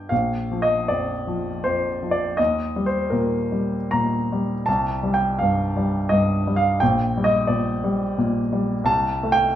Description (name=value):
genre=classical, romantic character piece for solo piano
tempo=71-89 BPM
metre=3/4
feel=rubato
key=unclear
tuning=A4 = 440 Hz
part: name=clear baby grand piano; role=solo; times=0.0-9.6 s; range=Bb1 to Bb5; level=-19 LUFS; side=equal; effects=none
room=wet large studio reverb, RT60 0.9 s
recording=heard from further back in the room, nothing above 10.6 kHz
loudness=-20 LUFS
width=side -11 dB against mid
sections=0.1-9.6 A section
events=none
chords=0.1 Bb; 2.4 Eb; 4.7 C5; 6.8 Gm/Bb; 8.9 C5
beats=| 0.11 0.89 1.64 | 2.39 3.12 3.93 | 4.67 5.39 6.10 | 6.81 7.49 8.17 | 8.88